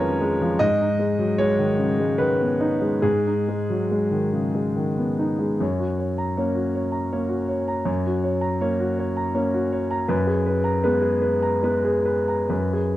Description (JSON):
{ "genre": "neoclassical minimalist piano", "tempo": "68-82 BPM", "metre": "3/4", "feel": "rubato", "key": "F# major", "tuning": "A4 = 438 Hz", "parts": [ { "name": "clear concert grand piano", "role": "solo", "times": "0.0-13.0 s", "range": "E#2 to A#5", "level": "-20 LUFS", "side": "equal", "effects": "none" } ], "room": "light reverb", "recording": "dry, close 1970s-style studio recording", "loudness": "-20 LUFS", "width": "side -14 dB against mid", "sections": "0.0-5.6 A section; 5.6-13.0 B section", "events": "none", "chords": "0.0 C#/E#; 0.6 G#m; 5.6 F#; 10.1 G#madd9/F#", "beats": "| 0.62 1.40 2.21 | 3.06 3.93 4.77 | 5.61 6.37 7.12 | 7.88 8.64 9.38 | 10.11 10.85 11.64 | 12.50" }